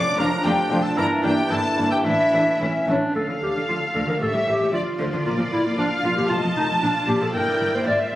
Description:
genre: quick classical-period movement for symphony orchestra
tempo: 114 BPM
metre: 2/4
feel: straight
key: D minor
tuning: A4 = 440 Hz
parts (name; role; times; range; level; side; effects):
- warm studio violin section; melody; 0.0-8.2 s; C#5 to D6; -30 LUFS; left 1 dB; none
- hollow small flute group; second line; 0.0-2.9 s; E5 to D6; -25 LUFS; left 1 dB; none
- warm clarinet; second line; 0.0-8.2 s; C#4 to D5; -25 LUFS; equal; none
- warm cor anglais; second line; 0.0-2.9 s; E4 to D5; -26 LUFS; equal; none
- warm bassoon; accompaniment; 0.0-2.8 s; E3 to F3; -30 LUFS; right 1 dB; none
- dark studio violin section; second line; 0.2-8.2 s; C#4 to A5; -26 LUFS; equal; none
- warm studio viola section; accompaniment; 0.2-8.2 s; D3 to A4; -29 LUFS; equal; none
- mellow French horn section; sustained chords; 0.2-3.0 s; E3 to D4; -28 LUFS; left 1 dB; none
- clear studio cello section; bass; 0.2-7.9 s; F2 to D3; -30 LUFS; equal; none
- dark studio double bass section; bass; 0.2-7.9 s; F1 to D2; -31 LUFS; right 1 dB; none
room: wet scoring stage reverb, RT60 1.9 s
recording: recorded on a phone in the room, club reverb, compression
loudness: -19 LUFS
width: side -14 dB against mid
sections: 0.0-3.2 A section; 3.2-8.2 B section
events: none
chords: 0.0 Dm/F; 1.0 Em7b5/G; 2.0 Asus4; 2.6 A; 3.2 Dm; 4.2 A7; 4.7 Dm; 5.3 Bb; 6.3 F7; 6.8 Bb; 7.3 Em7b5/G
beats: 0.44 | 0.97 1.50 | 2.05 2.60 | 3.15 3.68 | 4.21 4.73 | 5.26 5.78 | 6.30 6.82 | 7.35 7.87

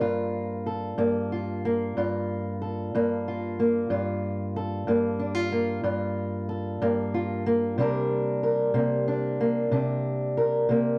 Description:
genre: blues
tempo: 62 BPM (dotted quarters)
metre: 12/8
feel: straight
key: G minor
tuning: A4 = 440 Hz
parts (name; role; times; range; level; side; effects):
- fingerpicked old ladder-braced acoustic guitar; solo; 0.0-11.0 s; G2 to Bb4; -27 LUFS; equal; none
room: moderate booth ambience, RT60 0.2 s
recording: dry, close 1970s-style studio recording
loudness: -27 LUFS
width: mono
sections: 0.0-11.0 A section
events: none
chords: 0.0 Gm9; 7.8 Csus2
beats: | 0.02 0.99 1.96 2.93 | 3.90 4.87 5.84 6.81 | 7.78 8.75 9.73 10.70

